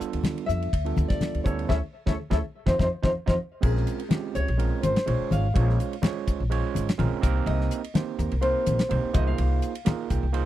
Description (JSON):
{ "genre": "electric jazz fusion", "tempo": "125 BPM", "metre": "4/4", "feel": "swing 54% on 16ths", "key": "Bb dorian from 3.6 s", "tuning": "A4 = 442 Hz", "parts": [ { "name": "nylon-string guitar", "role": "melody", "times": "0.0-10.2 s", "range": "Ab4 to F5", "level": "-30 LUFS", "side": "left 2 dB", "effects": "none" }, { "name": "overdriven tine electric piano", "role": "accompaniment", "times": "0.0-10.5 s", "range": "G3 to G5", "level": "-31 LUFS", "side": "right 11 dB", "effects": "none" }, { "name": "upright bass", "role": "bass", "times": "0.0-10.4 s", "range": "Ab1 to F2", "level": "-26 LUFS", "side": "equal", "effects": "none" }, { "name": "damped 70s drum kit", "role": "drums", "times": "0.0-10.5 s", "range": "crash cymbal, hi-hat, kick drum, ride cymbal, snare drum", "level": "-26 LUFS", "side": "equal", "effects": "none" }, { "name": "congas", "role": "percussion", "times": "0.0-10.4 s", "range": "none", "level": "-29 LUFS", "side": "left 3 dB", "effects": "none" } ], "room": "little or no reverb", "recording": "dry, close 1970s-style studio recording", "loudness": "-23 LUFS", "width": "side -13 dB against mid", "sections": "0.0-3.6 A section; 3.6-10.5 B section", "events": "band accent 1.7-3.6; tine electric piano fill 9.9-10.5", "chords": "0.0 G7/D; 1.5 A9/D; 2.7 F5; 3.6 Bbm9; 7.2 Cm7; 9.1 Ab69/C", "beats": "0.24 0.73 1.21 | 1.69 2.18 2.66 3.14 | 3.62 4.11 4.59 5.07 | 5.55 6.03 6.51 6.99 | 7.47 7.95 8.43 8.91 | 9.38 9.86 10.34" }